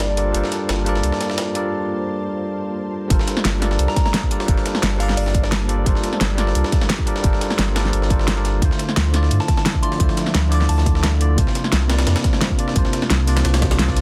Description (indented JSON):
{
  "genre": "liquid drum and bass",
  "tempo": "174 BPM",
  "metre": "4/4",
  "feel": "straight",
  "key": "G dorian",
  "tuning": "A4 = 440 Hz",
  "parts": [
    { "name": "soft synth bell", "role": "melody", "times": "0.0-0.3, 3.9-5.8, 9.4-10.8 s", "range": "D5 to D6", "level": "-32 LUFS", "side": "equal", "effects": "chorus, phaser, low-pass filter, dub echo" },
    { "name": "bell-like tine electric piano", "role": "accompaniment", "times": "0.0-14.0 s", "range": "C3 to D5", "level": "-26 LUFS", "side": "equal", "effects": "none" },
    { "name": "ethereal airy pad", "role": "sustained chords", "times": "0.0-14.0 s", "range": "F3 to A5", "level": "-33 LUFS", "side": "equal", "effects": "none" },
    { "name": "warm sub bass", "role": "bass", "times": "0.0-14.0 s", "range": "G1 to G2", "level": "-21 LUFS", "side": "equal", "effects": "none" },
    { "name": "breakbeat sampler-style drum kit", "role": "drums", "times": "0.0-14.0 s", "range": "hi-hat, snare drum", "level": "-30 LUFS", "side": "equal", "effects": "high-pass filter on hats, high-pass filter on snare" },
    { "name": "pop drum kit", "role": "drums", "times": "0.0-14.0 s", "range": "hi-hat, snare drum", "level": "-25 LUFS", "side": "equal", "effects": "none" },
    { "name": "electronic kick drum", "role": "drums", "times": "3.1-13.9 s", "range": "none", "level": "-22 LUFS", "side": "equal", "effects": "none" }
  ],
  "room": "light reverb",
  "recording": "dense, heavily limited modern master",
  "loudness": "-19 LUFS",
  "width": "mono",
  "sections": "0.0-3.1 A section; 3.1-14.0 B section",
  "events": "build-up 0.0-3.1; break 1.7-3.1; drop 3.1-14.0",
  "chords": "0.0 Gm11; 8.6 Dm9; 11.4 C7sus4"
}